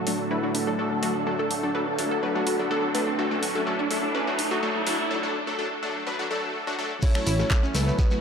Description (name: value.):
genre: progressive house.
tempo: 125 BPM.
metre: 4/4.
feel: straight.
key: unclear.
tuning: A4 = 440 Hz.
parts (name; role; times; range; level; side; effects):
lush unison pad; sustained chords; 0.0-8.2 s; A2 to A4; -32 LUFS; right 1 dB; chorus, phaser, sidechain pumping.
riser; sound effects; 0.3-5.1 s; none; -33 LUFS; equal; none.
analog pluck; arpeggios; 0.1-8.2 s; A3 to B4; -30 LUFS; right 1 dB; chorus, sidechain pumping, tape echo.
supersaw stab; stabs; 0.1-8.2 s; F#3 to B4; -27 LUFS; left 1 dB; sidechain pumping, low-pass filter, tape echo.
big-room dance drum kit; drums; 0.1-7.8 s; crash cymbal, finger snaps, handclaps, hi-hat; -32 LUFS; right 1 dB; overdrive, high-pass filter on hats, high-pass filter on cymbals, high-pass filter on snare.
wide unison lead; melody; 7.0-8.2 s; B4 to C#5; -31 LUFS; equal; ping-pong delay.
electronic kick drum; drums; 7.0-8.1 s; none; -22 LUFS; equal; none.
shekere; percussion; 7.0-8.2 s; none; -36 LUFS; left 2 dB; none.
plucky analog bass; bass; 7.3-7.9 s; A1 to C#2; -23 LUFS; equal; sidechain pumping.
room: wet lush hall reverb, RT60 2.2 s.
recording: dark, warm production, high-pass filter.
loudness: -23 LUFS.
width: side -6 dB against mid.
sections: 0.0-7.0 A section; 7.0-8.2 B section.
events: build-up 0.0-7.0; filter sweep on synth pluck 0.0-7.0; filter sweep on supersaw synth 0.0-7.0; filter sweep 0.0-7.0; riser 0.3-5.1; break 5.1-7.0; drop 7.0-8.2.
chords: 0.0 D/A; 7.0 A6.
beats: 0.31 0.79 | 1.27 1.75 2.23 2.71 | 3.19 3.67 4.15 4.63 | 5.11 5.59 6.07 6.55 | 7.03 7.51 7.99.